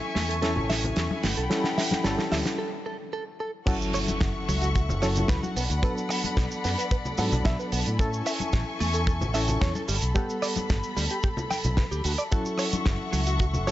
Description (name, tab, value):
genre	nu-disco, nu disco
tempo	111 BPM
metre	4/4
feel	straight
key	F# minor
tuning	A4 = 440 Hz
part	barky reed electric piano	accompaniment	0.0-13.7 s	F#3 to F#5	-32 LUFS	equal	fast tremolo, tape echo
part	warm studio string section	sustained chords	0.0-13.7 s	A4 to C#6	-33 LUFS	left 3 dB	sidechain pumping, low-pass filter
part	direct-recorded clean electric guitar	riff	0.2-13.7 s	F#3 to G5	-34 LUFS	right 2 dB	analog chorus
part	fingered electric bass with an envelope filter	bass	0.2-13.7 s	F#1 to A2	-28 LUFS	equal	sidechain pumping
part	damped 70s drum kit	drums	0.2-13.7 s	cabasa, crash cymbal, hi-hat, rim click, snare drum	-31 LUFS	right 2 dB	small room ambience
part	congas	percussion	0.6-13.6 s	none	-34 LUFS	left 2 dB	none
part	kick drum	drums	3.7-13.5 s	none	-25 LUFS	equal	small room ambience
part	impact	sound effects	3.7-5.8 s	none	-36 LUFS	equal	none
room	light reverb, small room ambience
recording	nothing above 7.8 kHz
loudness	-24 LUFS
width	side -14 dB against mid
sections	0.0-3.7 A section; 3.7-13.7 B section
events	build-up 0.0-3.7; drum fill 0.0-2.6; filter sweep on reed electric piano 0.0-3.7; break 2.6-3.7; drop 3.7-13.7; impact 3.7-5.8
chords	0.0 Amaj7; 1.2 Gmaj9; 3.7 F#m7; 5.6 Bm7; 8.0 Amaj7; 9.9 Gmaj9; 12.3 F#m7